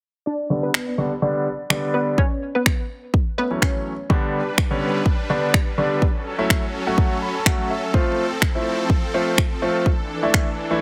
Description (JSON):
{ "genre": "dance-pop", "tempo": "125 BPM", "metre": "4/4", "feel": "straight", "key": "unclear", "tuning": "A4 = 441 Hz", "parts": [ { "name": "analog pluck", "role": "melody", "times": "0.3-4.0 s", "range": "B3 to D5", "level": "-28 LUFS", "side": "equal", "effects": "chorus, sidechain pumping, low-pass filter, tape echo" }, { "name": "warm concert grand piano", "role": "accompaniment", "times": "0.5-10.8 s", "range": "D3 to B5", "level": "-25 LUFS", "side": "equal", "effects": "low-pass filter" }, { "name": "pop drum kit", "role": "drums", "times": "0.7-10.5 s", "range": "finger snaps, kick drum", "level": "-21 LUFS", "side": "equal", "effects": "none" }, { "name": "supersaw pad", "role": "sustained chords", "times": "4.1-10.8 s", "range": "E3 to B4", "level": "-30 LUFS", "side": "equal", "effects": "sidechain pumping" } ], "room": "light reverb", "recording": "heavily compressed radio sound", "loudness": "-21 LUFS", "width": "mono", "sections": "0.3-4.1 A section; 4.1-10.8 B section", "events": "filter sweep 0.3-4.1; grand piano fill 7.0-7.9", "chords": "0.3 G; 2.2 A6; 4.1 G; 6.0 A6; 7.9 F; 9.9 Dsus2", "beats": "| 0.26 0.74 1.22 1.70 | 2.18 2.66 3.14 3.62 | 4.10 4.58 5.06 5.54 | 6.02 6.50 6.98 7.46 | 7.94 8.42 8.90 9.38 | 9.86 10.34" }